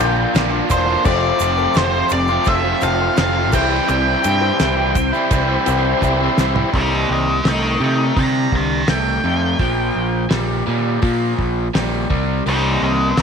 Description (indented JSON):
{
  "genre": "classic rock",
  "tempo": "84 BPM",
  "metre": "4/4",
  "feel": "straight",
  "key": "C major",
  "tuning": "A4 = 443 Hz",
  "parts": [
    { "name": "octave-fuzz lead guitar", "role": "melody", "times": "0.0-13.2 s", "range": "G4 to Bb5", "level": "-20 LUFS", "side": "equal", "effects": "wah, distortion, slapback echo" },
    { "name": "clear upright piano", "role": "accompaniment", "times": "0.0-6.5 s", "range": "C4 to D5", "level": "-26 LUFS", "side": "left 12 dB", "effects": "none" },
    { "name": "bright tonewheel organ", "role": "sustained chords", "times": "0.0-6.7 s", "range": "C4 to D5", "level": "-26 LUFS", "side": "right 1 dB", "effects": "none" },
    { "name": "overdriven electric guitar", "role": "riff", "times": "0.0-13.2 s", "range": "F2 to F4", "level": "-20 LUFS", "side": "equal", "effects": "none" },
    { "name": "growling picked electric bass", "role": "bass", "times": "0.0-13.2 s", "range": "E1 to C3", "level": "-21 LUFS", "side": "equal", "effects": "overdrive" },
    { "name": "damped 70s drum kit", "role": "drums", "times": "0.0-13.2 s", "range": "crash cymbal, hi-hat, kick drum, ride cymbal, snare drum, toms", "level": "-22 LUFS", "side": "equal", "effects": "none" },
    { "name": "tube shaker", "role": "percussion", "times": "0.3-6.5 s", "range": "none", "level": "-36 LUFS", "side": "right 19 dB", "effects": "none" }
  ],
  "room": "light reverb, small room ambience",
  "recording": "1960s-style stereo with parts hard left and right",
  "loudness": "-15 LUFS",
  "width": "side -6 dB against mid",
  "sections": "0.0-6.7 A section; 6.7-13.2 B section",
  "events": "drum fill 6.0-6.7; lead electric guitar solo 6.7-13.2",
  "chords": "0.0 Bb; 1.1 F; 3.5 C; 6.7 C5; 9.6 Bb5; 12.1 C5"
}